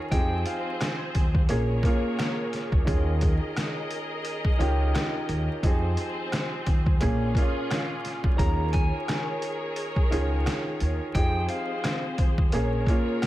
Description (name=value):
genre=hip hop, boom-bap hip-hop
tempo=87 BPM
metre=4/4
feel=swing 56% on 16ths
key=unclear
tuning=A4 = 440 Hz
part: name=electric guitar at the edge of break-up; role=melody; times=0.0-2.8, 8.4-13.3 s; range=F5 to Bb5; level=-34 LUFS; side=left 1 dB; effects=spring reverb, high-pass filter, low-pass filter, ping-pong delay
part: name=warm upright piano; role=accompaniment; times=0.0-13.3 s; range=Bb2 to Ab4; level=-30 LUFS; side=right 1 dB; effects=cassette tape, high-pass filter, low-pass filter
part: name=clear studio string section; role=stabs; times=0.0-13.3 s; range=C4 to Eb5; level=-34 LUFS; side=left 1 dB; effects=high-pass filter, low-pass filter, ping-pong delay
part: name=upright bass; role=bass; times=0.1-12.8 s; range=Bb1 to F2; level=-26 LUFS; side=equal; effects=none
part: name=trip hop sampler-style drum kit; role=drums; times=0.1-13.3 s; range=hi-hat, kick drum, rim click, snare drum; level=-25 LUFS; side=equal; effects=none
room=light reverb, studio reverb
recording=vinyl crackle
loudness=-23 LUFS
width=side -15 dB against mid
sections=0.0-13.3 A section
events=none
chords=0.1 Fm9; 1.5 Bbm7; 2.9 Eb9sus4; 5.6 Fm9; 7.0 Bbm7; 8.4 Eb9sus4; 11.1 Fm9; 12.5 Bbm7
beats=| 0.12 0.81 1.49 2.18 | 2.87 3.56 4.25 4.94 | 5.63 6.32 7.01 7.70 | 8.39 9.08 9.77 10.46 | 11.15 11.84 12.53 13.22